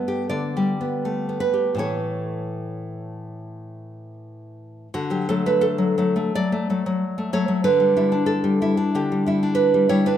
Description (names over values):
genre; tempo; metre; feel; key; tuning
romantic piece for solo classical guitar; 74-95 BPM; 4/4; rubato; D major; A4 = 440 Hz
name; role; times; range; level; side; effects
nylon-string guitar; solo; 0.0-10.2 s; G2 to E5; -20 LUFS; equal; none
room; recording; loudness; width
wet recital hall reverb, RT60 1.7 s; minimal, uncompressed stereo recording; -19 LUFS; side -10 dB against mid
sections
0.0-4.9 A section; 4.9-10.2 B section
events
none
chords
0.0 G; 1.8 A; 4.9 D; 7.7 Em7/D